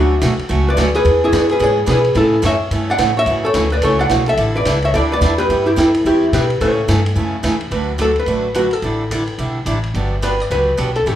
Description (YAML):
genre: country, western swing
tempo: 216 BPM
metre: 4/4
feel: swing 61% on 8ths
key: D major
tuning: A4 = 440 Hz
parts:
  - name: archtop guitar, miked and amplified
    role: melody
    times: 0.0-11.2 s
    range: D4 to F#5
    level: -16 LUFS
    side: equal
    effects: none
  - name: picked steel-string acoustic guitar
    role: accompaniment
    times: 0.0-11.2 s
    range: C#3 to B4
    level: -21 LUFS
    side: right 2 dB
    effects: none
  - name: upright bass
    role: bass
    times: 0.0-11.2 s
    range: G1 to B2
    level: -19 LUFS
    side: equal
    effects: none
  - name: vintage drum kit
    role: drums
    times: 0.2-11.1 s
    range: hi-hat, kick drum, ride cymbal, snare drum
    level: -26 LUFS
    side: equal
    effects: none
room: moderate large studio reverb, RT60 0.8 s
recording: band playing live in one room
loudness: -14 LUFS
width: side -11 dB against mid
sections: 0.0-7.7 A section; 7.7-11.2 B section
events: none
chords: 0.0 Dmaj7; 1.1 E7; 2.2 A; 3.3 F#m7; 4.4 A7sus4; 5.5 Em; 6.6 A; 7.7 D6; 8.8 A7sus4; 9.9 Gmaj7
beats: 0.22 0.49 0.77 | 1.05 1.33 1.61 1.88 | 2.16 2.44 2.72 2.99 | 3.27 3.55 3.83 4.11 | 4.38 4.66 4.94 5.22 | 5.50 5.77 6.05 6.33 | 6.61 6.88 7.16 7.44 | 7.72 8.00 8.28 8.55 | 8.83 9.11 9.39 9.67 | 9.95 10.23 10.51 10.78 | 11.06